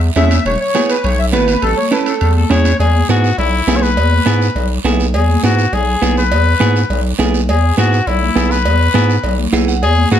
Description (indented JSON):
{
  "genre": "latin, cumbia",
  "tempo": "205 BPM",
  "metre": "4/4",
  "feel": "straight",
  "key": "unclear",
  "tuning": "A4 = 440 Hz",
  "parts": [
    { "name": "growling FM bass", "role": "bass", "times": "0.0-10.2 s", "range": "E1 to G#2", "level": "-14 LUFS", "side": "equal", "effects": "none" },
    { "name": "accordion", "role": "melody", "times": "0.2-2.3 s", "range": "A4 to E5", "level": "-17 LUFS", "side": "equal", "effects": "light tremolo tuning, plate reverb" },
    { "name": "semi-hollow electric guitar", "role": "accompaniment", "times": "0.2-10.2 s", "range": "B3 to F#5", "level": "-17 LUFS", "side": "right 6 dB", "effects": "none" },
    { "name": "congas", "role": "percussion", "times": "0.2-10.2 s", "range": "none", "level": "-22 LUFS", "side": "left 2 dB", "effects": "none" },
    { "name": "guiro", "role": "percussion", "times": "0.2-10.2 s", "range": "none", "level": "-28 LUFS", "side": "right 6 dB", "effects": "none" },
    { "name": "timbales and cowbell", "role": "percussion", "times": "0.2-10.2 s", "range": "none", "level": "-24 LUFS", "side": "right 1 dB", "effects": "none" },
    { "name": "clear trumpet", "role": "second line", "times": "2.4-10.2 s", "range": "E4 to C#5", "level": "-17 LUFS", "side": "left 4 dB", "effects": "none" }
  ],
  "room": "light reverb",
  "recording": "none",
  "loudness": "-11 LUFS",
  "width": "side -10 dB against mid",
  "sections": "0.0-2.8 A section; 2.8-10.2 B section",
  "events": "trumpet solo 2.8-10.2; clean electric guitar fill 9.4-9.8",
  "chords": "0.5 E; 1.6 A; 2.8 E"
}